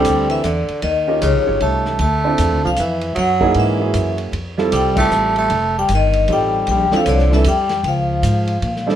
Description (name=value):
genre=jazz, small-group swing and bop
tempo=154 BPM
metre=3/4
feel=swing 63% on 8ths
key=unclear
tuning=A4 = 440 Hz
part: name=vibraphone with medium hard mallets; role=melody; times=0.0-8.8 s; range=Db5 to A5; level=-19 LUFS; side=left 3 dB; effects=none
part: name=growling tenor saxophone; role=second line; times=0.0-8.8 s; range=Db3 to A3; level=-22 LUFS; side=right 2 dB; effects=none
part: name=warm grand piano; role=accompaniment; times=0.0-9.0 s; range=F3 to Db5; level=-20 LUFS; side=right 4 dB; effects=none
part: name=upright bass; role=bass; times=0.0-9.0 s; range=F1 to Bb2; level=-20 LUFS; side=equal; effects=none
part: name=vintage drum kit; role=drums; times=0.0-9.0 s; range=crash cymbal, hi-hat, kick drum, ride cymbal, snare drum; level=-28 LUFS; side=equal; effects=none
room=moderate studio reverb, RT60 0.7 s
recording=minimal, uncompressed stereo recording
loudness=-14 LUFS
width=side -10 dB against mid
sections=0.0-9.0 A section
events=band accent 4.9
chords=0.0 C6; 0.8 Eb9; 2.0 Dm9; 3.2 F#13; 4.3 Fmaj7; 5.5 F7; 6.7 Bbmaj9#11; 7.8 Db6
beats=0.06 0.45 | 0.83 1.22 1.61 | 2.00 2.39 2.78 | 3.17 3.56 3.95 | 4.34 4.73 5.12 | 5.50 5.89 6.29 | 6.67 7.07 7.46 | 7.84 8.23 8.62